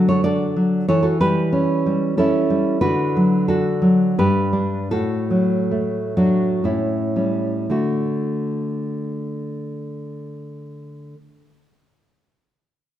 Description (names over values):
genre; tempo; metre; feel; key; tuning
romantic piece for solo classical guitar; 53-94 BPM; 3/4; rubato; D major; A4 = 439 Hz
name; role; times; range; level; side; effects
nylon-string guitar; solo; 0.0-11.2 s; G2 to D5; -18 LUFS; equal; none
room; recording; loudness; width
wet scoring stage reverb, RT60 1.7 s; minimal, uncompressed stereo recording; -17 LUFS; side -11 dB against mid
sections
0.0-7.7 A section; 7.7-13.0 B section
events
slowing down 1.9-7.7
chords
0.0 D; 0.9 A7/E; 2.8 D; 4.2 G; 4.9 D/A; 6.6 A7; 7.7 D